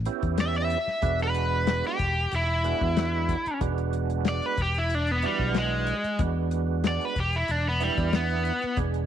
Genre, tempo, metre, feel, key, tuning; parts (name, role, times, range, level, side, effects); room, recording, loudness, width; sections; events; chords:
straight-eighth soul blues; 93 BPM; 4/4; straight; E mixolydian; A4 = 440 Hz
fingered electric bass; bass; 0.0-9.1 s; E1 to E2; -28 LUFS; equal
overdriven tonewheel organ; accompaniment; 0.1-9.1 s; E3 to G#4; -32 LUFS; right 14 dB; slow rotary speaker, chorus vibrato
warm soul drum kit; drums; 0.1-9.1 s; hi-hat, kick drum, snare drum; -31 LUFS; left 4 dB
cranked stack guitar; melody; 0.4-8.8 s; G3 to E5; -27 LUFS; equal; overdrive, slapback echo
light reverb, studio reverb; 1960s-style stereo; -24 LUFS; side -10 dB against mid
0.0-3.6 A section; 3.6-9.1 A section
overdriven electric guitar solo 0.0-3.6, 3.6-9.1
0.0 A9 (rootless); 1.0 E9